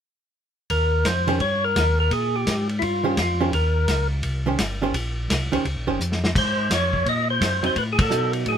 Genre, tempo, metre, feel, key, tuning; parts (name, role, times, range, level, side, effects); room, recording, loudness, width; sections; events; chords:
soul jazz organ trio; 170 BPM; 4/4; swing 64% on 8ths; Eb mixolydian; A4 = 442 Hz
percussive tonewheel organ; melody; 0.7-4.1, 6.4-8.6 s; Fb4 to Eb5; -23 LUFS; equal; slow rotary speaker, overdrive
mellow tonewheel organ; bass; 0.7-8.6 s; G1 to Cb3; -24 LUFS; equal; chorus vibrato, slow rotary speaker
warm soul drum kit; drums; 0.7-8.6 s; crash cymbal, hi-hat, kick drum, ride cymbal, snare drum; -26 LUFS; left 1 dB
archtop guitar, miked and amplified; accompaniment; 1.3-8.6 s; Eb3 to C5; -24 LUFS; right 4 dB
moderate club reverb, RT60 0.5 s; minimal, uncompressed stereo recording; -20 LUFS; side -8 dB against mid
0.7-8.6 A section
drum fill 6.0-6.3; band accent 7.9
0.7 Eb13; 6.3 Ab13; 7.8 Adim7(no3)